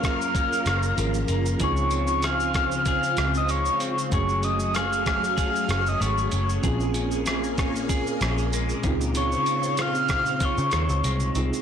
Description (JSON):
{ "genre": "indie pop, bedroom pop", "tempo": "95 BPM", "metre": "4/4", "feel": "swing 55% on 16ths", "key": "Db major", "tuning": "A4 = 440 Hz", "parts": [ { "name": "soft octave-layered synth lead", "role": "melody", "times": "0.0-11.4 s", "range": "Db6 to F6", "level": "-26 LUFS", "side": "left 2 dB", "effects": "analog chorus, analog delay" }, { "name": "clean electric guitar", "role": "accompaniment", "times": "0.0-11.6 s", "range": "Gb2 to Ab4", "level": "-32 LUFS", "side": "left 3 dB", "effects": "wide subtle chorus, warbly pitch drift" }, { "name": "mellow tine electric piano", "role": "accompaniment", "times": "0.0-11.6 s", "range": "A3 to Bb4", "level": "-31 LUFS", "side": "right 4 dB", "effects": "medium stereo tremolo" }, { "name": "phased string machine", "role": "sustained chords", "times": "0.0-11.6 s", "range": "Bb2 to Bb4", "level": "-32 LUFS", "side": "equal", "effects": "ensemble chorus, phaser" }, { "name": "dusty soul sampler-style drum kit", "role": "drums", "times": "0.0-11.6 s", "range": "hi-hat, kick drum, rim click, shaker", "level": "-29 LUFS", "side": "equal", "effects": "soft clipping on snare" }, { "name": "vintage muted picked electric bass", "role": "bass", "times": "0.7-11.5 s", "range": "Gb1 to Db3", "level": "-27 LUFS", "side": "equal", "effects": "transformer saturation" } ], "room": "light reverb, digital ambience", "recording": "blown-out, overdriven recording, overdrive", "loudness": "-22 LUFS", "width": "side -8 dB against mid", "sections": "0.0-11.6 A section", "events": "none", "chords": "0.0 Gbmaj7; 1.6 Dbmaj7; 4.1 Gbmadd9; 6.6 Bbm7; 8.8 Dbmaj7" }